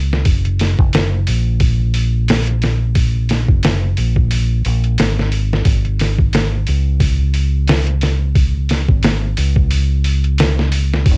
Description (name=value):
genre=trip hop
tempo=89 BPM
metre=4/4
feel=swing 57% on 16ths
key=unclear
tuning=A4 = 435 Hz
part: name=deep dub fingered electric bass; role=bass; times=0.0-11.2 s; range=F#1 to C#2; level=-15 LUFS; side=equal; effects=none
part: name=trip hop sampler-style drum kit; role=drums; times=0.1-11.2 s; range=hi-hat, kick drum, snare drum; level=-16 LUFS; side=equal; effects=cassette tape
room=light reverb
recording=home recording on cassette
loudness=-13 LUFS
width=side -34 dB against mid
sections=0.0-11.2 A section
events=none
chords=none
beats=| 0.27 0.94 1.61 2.29 | 2.96 3.64 4.31 4.99 | 5.66 6.33 7.01 7.68 | 8.36 9.03 9.70 10.38 | 11.05